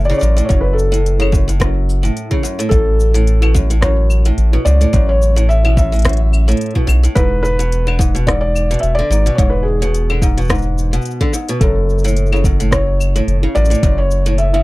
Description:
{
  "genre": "folktronica",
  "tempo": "108 BPM",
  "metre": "4/4",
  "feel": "swing 56% on 16ths",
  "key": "A major",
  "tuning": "A4 = 440 Hz",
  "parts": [
    { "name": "picked old ladder-braced acoustic guitar", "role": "arpeggios", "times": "0.0-14.6 s", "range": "F#2 to D3", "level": "-21 LUFS", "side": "equal", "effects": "none" },
    { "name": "round analog bass", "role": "bass", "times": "0.0-14.6 s", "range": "E1 to C#2", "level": "-14 LUFS", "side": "equal", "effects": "none" },
    { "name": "organic electronic drum kit", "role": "drums", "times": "0.0-14.5 s", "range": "claves, hi-hat, rim click, shaker", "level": "-24 LUFS", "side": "left 2 dB", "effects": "none" },
    { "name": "felt-muted upright piano", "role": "melody", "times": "0.1-14.6 s", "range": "G#4 to E5", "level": "-20 LUFS", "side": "left 1 dB", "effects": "tape echo" },
    { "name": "electronic kick drum", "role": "drums", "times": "0.5-14.0 s", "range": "none", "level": "-16 LUFS", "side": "equal", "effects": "none" }
  ],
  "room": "little or no reverb",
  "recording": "dry, close 1970s-style studio recording",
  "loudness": "-12 LUFS",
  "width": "side -19 dB against mid",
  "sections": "0.0-14.6 A section",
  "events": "none",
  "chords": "0.0 F#m; 2.7 A69; 7.2 E7; 11.6 F#m",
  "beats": "| 0.50 1.05 1.61 2.16 | 2.72 3.27 3.83 4.39 | 4.94 5.50 6.05 6.61 | 7.16 7.72 8.27 8.83 | 9.39 9.94 10.50 11.05 | 11.61 12.16 12.72 13.27 | 13.83 14.39"
}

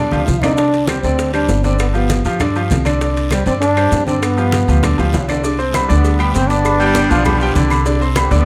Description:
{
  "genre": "latin, salsa",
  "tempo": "198 BPM",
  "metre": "4/4",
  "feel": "straight",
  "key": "unclear",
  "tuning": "A4 = 440 Hz",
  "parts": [
    { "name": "breathy trombone", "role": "melody", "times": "0.0-5.1 s", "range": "G3 to F4", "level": "-20 LUFS", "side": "equal", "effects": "none" },
    { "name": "bright grand piano", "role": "accompaniment", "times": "0.0-8.4 s", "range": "D3 to D6", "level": "-22 LUFS", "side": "equal", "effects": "none" },
    { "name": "upright bass", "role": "bass", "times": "0.0-8.4 s", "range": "G1 to B2", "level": "-19 LUFS", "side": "equal", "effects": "none" },
    { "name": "bongos and cowbell", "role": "percussion", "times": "0.1-8.4 s", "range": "none", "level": "-31 LUFS", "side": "equal", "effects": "none" },
    { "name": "congas", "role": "percussion", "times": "0.1-8.4 s", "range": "none", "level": "-26 LUFS", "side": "equal", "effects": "none" },
    { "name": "maracas", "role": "percussion", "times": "0.1-8.4 s", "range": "none", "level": "-38 LUFS", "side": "equal", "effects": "none" },
    { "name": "timbales and agogo bells", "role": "percussion", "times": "0.1-8.3 s", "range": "none", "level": "-27 LUFS", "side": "equal", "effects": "none" },
    { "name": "guiro", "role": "percussion", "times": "0.3-8.4 s", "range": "none", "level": "-36 LUFS", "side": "equal", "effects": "none" },
    { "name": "claves", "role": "percussion", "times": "0.4-8.3 s", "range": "none", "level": "-33 LUFS", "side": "equal", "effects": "none" },
    { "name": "bright trombone section", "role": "melody", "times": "5.7-8.4 s", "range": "D3 to D4", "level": "-21 LUFS", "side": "equal", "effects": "none" },
    { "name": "bright baritone saxophone", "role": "second line", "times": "6.8-8.1 s", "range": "D3 to G3", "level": "-22 LUFS", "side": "equal", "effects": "none" }
  ],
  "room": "light reverb",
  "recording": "none",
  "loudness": "-15 LUFS",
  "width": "mono",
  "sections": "0.0-5.4 A section; 5.4-8.4 B section",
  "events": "drum fill 0.0-0.6, 5.0-5.4",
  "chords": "0.0 G7; 0.6 Csus2; 1.8 G7; 3.0 Csus2; 4.2 G7; 5.4 Csus2; 6.7 G7; 7.9 Csus2",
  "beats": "0.28 | 0.59 0.89 1.19 1.50 | 1.80 2.10 2.41 2.71 | 3.01 3.32 3.62 3.92 | 4.23 4.53 4.83 5.14 | 5.44 5.74 6.05 6.35 | 6.65 6.96 7.26 7.56 | 7.86 8.17"
}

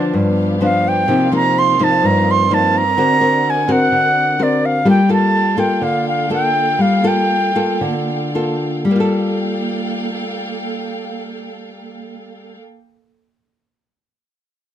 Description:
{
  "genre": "bossa nova",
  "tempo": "108-127 BPM",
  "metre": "4/4",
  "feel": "straight",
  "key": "G minor",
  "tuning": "A4 = 443 Hz",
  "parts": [
    { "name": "concert flute", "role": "melody", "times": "0.0-7.8 s", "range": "D5 to C6", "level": "-16 LUFS", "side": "right 2 dB", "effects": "none" },
    { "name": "nylon-string guitar", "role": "accompaniment", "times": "0.0-12.7 s", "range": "G2 to A#4", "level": "-16 LUFS", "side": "left 2 dB", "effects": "none" },
    { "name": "muted symphonic string section", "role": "sustained chords", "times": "0.0-12.6 s", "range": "Bb3 to G5", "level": "-25 LUFS", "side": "right 2 dB", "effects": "none" }
  ],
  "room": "little or no reverb",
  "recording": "close, detailed microphones",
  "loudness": "-13 LUFS",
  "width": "side -10 dB against mid",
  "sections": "0.0-8.9 A section; 8.9-13.3 B section",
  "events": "slowing down 4.9-8.9",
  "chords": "0.1 G7; 1.1 Cm11; 3.0 Daug7; 4.9 Gm9",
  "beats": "0.13 0.61 | 1.08 1.55 2.02 2.50 | 2.97 3.44 3.92 4.39 | 4.86 5.33 5.81 6.29 | 6.79 7.29 7.80 8.34 | 8.88 9.44 9.99 10.55 | 11.10 11.66 12.21"
}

